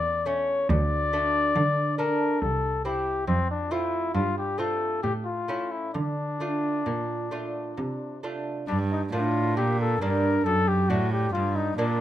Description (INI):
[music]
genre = classical, baroque-style sonata movement with continuo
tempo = 68 BPM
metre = 3/4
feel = rubato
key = D minor, G minor from 8.7 s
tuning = A4 = 440 Hz
[part]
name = mellow trumpet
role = melody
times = 0.0-12.0 s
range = C4 to D5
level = -27 LUFS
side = left 4 dB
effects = none
[part]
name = lute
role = accompaniment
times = 0.0-12.0 s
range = D2 to F4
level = -31 LUFS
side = right 3 dB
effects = none
[part]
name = rich cello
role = bass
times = 0.0-12.0 s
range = C2 to D3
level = -28 LUFS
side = right 2 dB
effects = none
[sound]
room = light reverb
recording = close, detailed microphones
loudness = -24 LUFS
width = side -12 dB against mid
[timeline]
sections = 0.0-8.7 A section; 8.7-12.0 A section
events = none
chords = 0.0 A/E; 0.7 D5; 2.4 C; 3.3 F; 5.0 A; 5.9 Dm; 8.7 Gm; 10.5 D/F#; 11.3 Gm